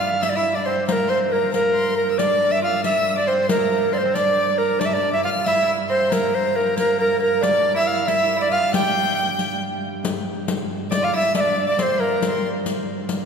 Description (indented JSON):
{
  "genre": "medieval dance",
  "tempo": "92 BPM (dotted quarters)",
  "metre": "6/8",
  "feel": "straight",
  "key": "G dorian",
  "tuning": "A4 = 439 Hz",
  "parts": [
    { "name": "bright reedy tenor recorder", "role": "melody", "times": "0.0-12.5 s", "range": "Bb4 to G5", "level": "-20 LUFS", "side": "right 1 dB", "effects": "none" },
    { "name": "clear fiddle", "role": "second line", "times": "0.0-12.5 s", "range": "Bb5 to G6", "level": "-29 LUFS", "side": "left 5 dB", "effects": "none" },
    { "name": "lute", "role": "second line", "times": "0.0-12.5 s", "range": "Bb3 to G4", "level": "-28 LUFS", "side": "right 3 dB", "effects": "none" },
    { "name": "pipe organ, flutes", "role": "drone", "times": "0.0-13.3 s", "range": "G2", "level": "-30 LUFS", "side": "right 2 dB", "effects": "none" },
    { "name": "riq", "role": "percussion", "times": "0.2-13.3 s", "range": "none", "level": "-28 LUFS", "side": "left 4 dB", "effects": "none" }
  ],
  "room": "wet church reverb, RT60 3.7 s",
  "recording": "recorded in a church or concert hall",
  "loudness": "-18 LUFS",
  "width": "side -6 dB against mid",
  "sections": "0.0-10.0 A section; 10.0-13.3 B section",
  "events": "none",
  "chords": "none",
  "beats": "0.22 | 0.88 1.53 | 2.19 2.84 | 3.50 4.15 | 4.81 5.46 | 6.12 6.77 | 7.43 8.08 | 8.73 9.39 | 10.04 10.69 | 11.35 12.00 | 12.65"
}